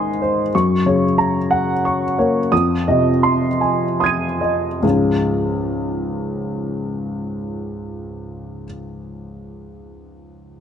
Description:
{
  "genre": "neoclassical minimalist piano",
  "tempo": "47-63 BPM (dotted quarters)",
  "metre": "6/8",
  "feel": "rubato",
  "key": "Db major",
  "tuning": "A4 = 438 Hz",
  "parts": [
    { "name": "warm upright piano", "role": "solo", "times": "0.0-10.6 s", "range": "Db2 to Eb7", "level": "-17 LUFS", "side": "equal", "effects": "none" }
  ],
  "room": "light reverb",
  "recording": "nothing above 11.0 kHz",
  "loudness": "-16 LUFS",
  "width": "side -8 dB against mid",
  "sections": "0.0-4.8 A section; 4.8-9.6 B section",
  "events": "slowing down 0.0-4.8",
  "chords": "0.0 Ab; 0.5 Gb; 2.5 Fm7; 4.8 Db"
}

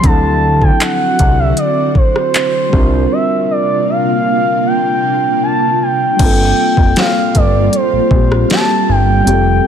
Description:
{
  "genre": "contemporary R&B",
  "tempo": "78 BPM",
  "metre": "4/4",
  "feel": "straight",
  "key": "G dorian",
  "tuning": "A4 = 439 Hz",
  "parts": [
    { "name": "gliding portamento lead", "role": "melody", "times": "0.0-9.7 s", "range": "C5 to A5", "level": "-15 LUFS", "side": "right 1 dB", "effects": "chorus, ping-pong delay" },
    { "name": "muted felt-like synth keys", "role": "accompaniment", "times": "0.0-9.7 s", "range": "F#3 to Bb4", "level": "-18 LUFS", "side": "left 2 dB", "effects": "chorus" },
    { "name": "ethereal airy pad", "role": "sustained chords", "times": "0.2-9.7 s", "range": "C3 to A4", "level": "-18 LUFS", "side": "equal", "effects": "ensemble chorus, built-in reverb, tremolo, sidechain pumping" },
    { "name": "fat analog bass", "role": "bass", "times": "0.0-9.6 s", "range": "F1 to D2", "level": "-14 LUFS", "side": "equal", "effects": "none" },
    { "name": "smooth R&B drum kit", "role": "drums", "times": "0.0-9.4 s", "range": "crash cymbal, handclaps, hi-hat, kick drum, rim click, snare drum", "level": "-14 LUFS", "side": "equal", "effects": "none" },
    { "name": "worn celesta", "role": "texture", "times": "7.0-8.8 s", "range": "G5", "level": "-29 LUFS", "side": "left 2 dB", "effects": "none" }
  ],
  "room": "digital ambience",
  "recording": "none",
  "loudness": "-10 LUFS",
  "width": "side -8 dB against mid",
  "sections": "0.0-6.2 A section; 6.2-9.7 B section",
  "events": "none",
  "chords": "0.0 D9; 2.7 C9sus4; 6.2 Gm11"
}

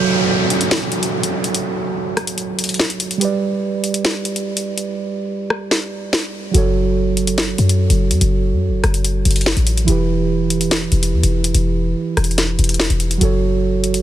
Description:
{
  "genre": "hip hop, drill",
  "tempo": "144 BPM",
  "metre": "4/4",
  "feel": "half-time",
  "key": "F# phrygian",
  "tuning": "A4 = 442 Hz",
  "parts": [
    { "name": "muted felt-like synth keys", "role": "accompaniment", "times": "0.0-14.0 s", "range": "E3 to D5", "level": "-20 LUFS", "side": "right 6 dB", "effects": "chorus, low-pass filter" },
    { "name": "downlifter", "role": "sound effects", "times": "0.0-3.2 s", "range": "none", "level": "-22 LUFS", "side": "left 1 dB", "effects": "none" },
    { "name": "drill drum kit", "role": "drums", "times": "0.5-14.0 s", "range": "hi-hat, rim click, snare drum", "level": "-21 LUFS", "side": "left 1 dB", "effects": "none" },
    { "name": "short 808-style bass", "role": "bass", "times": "6.5-14.0 s", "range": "E1 to F#2", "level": "-17 LUFS", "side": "left 1 dB", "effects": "none" }
  ],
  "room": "little or no reverb",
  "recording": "dense, heavily limited modern master, faint mains hum",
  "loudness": "-15 LUFS",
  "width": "side -12 dB against mid",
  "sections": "0.0-14.0 A section",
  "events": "break 0.0-6.5",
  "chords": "0.0 F#m; 3.2 G; 6.5 F#m; 9.9 Em; 13.2 F#m"
}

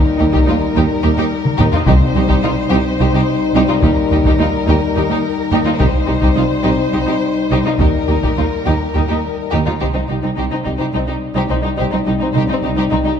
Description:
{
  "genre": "cinematic, epic orchestral film score",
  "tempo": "213 BPM (eighths)",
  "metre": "7/8",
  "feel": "straight",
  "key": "C minor from 9.8 s",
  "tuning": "A4 = 438 Hz",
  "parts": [
    { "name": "warm symphonic violin section", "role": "melody", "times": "0.0-13.1 s", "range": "Eb4 to C5", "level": "-24 LUFS", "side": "left 6 dB", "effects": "none" },
    { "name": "dark French horn section", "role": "sustained chords", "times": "0.0-13.2 s", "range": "G3 to Eb4", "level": "-20 LUFS", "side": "left 4 dB", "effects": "none" },
    { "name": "rich studio violin section", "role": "second line", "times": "0.2-13.1 s", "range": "C4 to G4", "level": "-24 LUFS", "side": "left 4 dB", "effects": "none" },
    { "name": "rich symphonic viola section", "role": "accompaniment", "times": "0.2-13.1 s", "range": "Eb4", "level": "-23 LUFS", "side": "right 1 dB", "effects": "none" },
    { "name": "dark tuba", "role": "bass", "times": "0.2-9.6 s", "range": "C2 to Eb2", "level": "-22 LUFS", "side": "right 4 dB", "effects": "none" },
    { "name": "rich symphonic cello section", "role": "bass", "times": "0.2-13.1 s", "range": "C2 to Eb2", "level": "-21 LUFS", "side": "right 4 dB", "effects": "none" },
    { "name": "warm symphonic double bass section", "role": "bass", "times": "0.2-13.0 s", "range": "C2 to Eb2", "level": "-21 LUFS", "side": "right 3 dB", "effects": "none" },
    { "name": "taiko ensemble", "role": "drums", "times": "0.3-10.9 s", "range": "none", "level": "-18 LUFS", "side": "left 1 dB", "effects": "none" },
    { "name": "timpani", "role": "percussion", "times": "1.9-2.7 s", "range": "C3", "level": "-23 LUFS", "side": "left 2 dB", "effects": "none" }
  ],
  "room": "moderate concert hall reverb, RT60 2.0 s",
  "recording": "dark, warm production",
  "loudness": "-13 LUFS",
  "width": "side -8 dB against mid",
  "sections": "0.0-9.8 A section; 9.8-13.2 B section",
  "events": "drum fill 1.4-1.9",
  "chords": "0.0 Eb; 1.9 Cm; 3.8 Eb; 5.8 Cm; 7.8 Eb; 9.8 Cm"
}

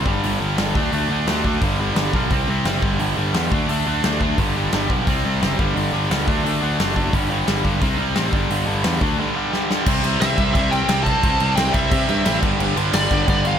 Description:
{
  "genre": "punk rock",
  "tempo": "175 BPM",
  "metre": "4/4",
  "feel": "straight",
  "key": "unclear",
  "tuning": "A4 = 445 Hz",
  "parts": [
    { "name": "tight distorted guitar", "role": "riff", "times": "0.0-13.6 s", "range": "G2 to D4", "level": "-24 LUFS", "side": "right 1 dB", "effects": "distortion" },
    { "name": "tight distorted guitar", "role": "riff", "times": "0.0-13.6 s", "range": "G2 to D4", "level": "-24 LUFS", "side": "equal", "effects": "distortion" },
    { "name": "fuzz picked electric bass", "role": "bass", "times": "0.0-13.5 s", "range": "F#1 to C3", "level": "-23 LUFS", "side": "equal", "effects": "overdrive" },
    { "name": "big rock drum kit", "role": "drums", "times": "0.1-13.5 s", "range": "crash cymbal, hi-hat, kick drum, snare drum", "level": "-23 LUFS", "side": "equal", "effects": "none" },
    { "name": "biting lead guitar", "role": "melody", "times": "10.2-13.6 s", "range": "D5 to A5", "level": "-22 LUFS", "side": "equal", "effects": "overdrive" }
  ],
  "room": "little or no reverb",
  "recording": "none",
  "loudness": "-17 LUFS",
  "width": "side -8 dB against mid",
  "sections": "0.0-9.9 A section; 9.9-13.6 B section",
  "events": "drum fill 9.5-9.9",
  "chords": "0.1 G5; 0.8 D5; 1.6 G; 2.3 C5; 2.8 G5; 3.5 D5; 4.4 G; 5.1 C5; 5.6 G5; 6.3 D; 7.1 G5; 7.8 C5; 8.3 G5; 9.0 D5; 9.2 G5; 9.9 C; 12.4 G5"
}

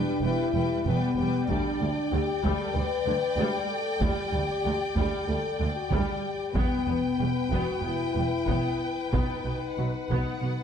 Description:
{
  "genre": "cinematic, epic orchestral film score",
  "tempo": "94 BPM",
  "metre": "4/4",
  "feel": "straight",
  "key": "E minor",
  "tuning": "A4 = 444 Hz",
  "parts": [
    { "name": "warm symphonic violin section", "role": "melody", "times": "0.0-10.6 s", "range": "F#5 to G5", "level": "-35 LUFS", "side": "left 4 dB", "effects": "none" },
    { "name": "rich symphonic violin section", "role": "second line", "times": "0.0-10.6 s", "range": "B4 to D5", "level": "-36 LUFS", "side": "left 3 dB", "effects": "none" },
    { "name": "rich symphonic viola section", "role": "accompaniment", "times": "0.0-10.5 s", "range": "D3 to B3", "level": "-35 LUFS", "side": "right 2 dB", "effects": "none" },
    { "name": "warm French horn section", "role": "sustained chords", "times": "0.0-10.6 s", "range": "B3 to B4", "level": "-30 LUFS", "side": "left 4 dB", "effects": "none" },
    { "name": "dark symphonic cello section", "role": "bass", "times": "0.2-10.5 s", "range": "D2 to B2", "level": "-34 LUFS", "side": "right 2 dB", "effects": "none" },
    { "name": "rich chamber double bass section", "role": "bass", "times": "0.2-10.5 s", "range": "E1 to D2", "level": "-32 LUFS", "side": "right 3 dB", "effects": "none" },
    { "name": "taiko ensemble", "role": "drums", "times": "1.5-10.6 s", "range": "none", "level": "-31 LUFS", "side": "equal", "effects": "none" }
  ],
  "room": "moderate recital hall reverb, RT60 1.6 s",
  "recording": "dark, warm production",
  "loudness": "-25 LUFS",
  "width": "side -8 dB against mid",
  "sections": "0.0-10.6 A section",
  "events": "none",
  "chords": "0.0 Em; 1.5 Dsus4; 6.6 Em; 9.1 B"
}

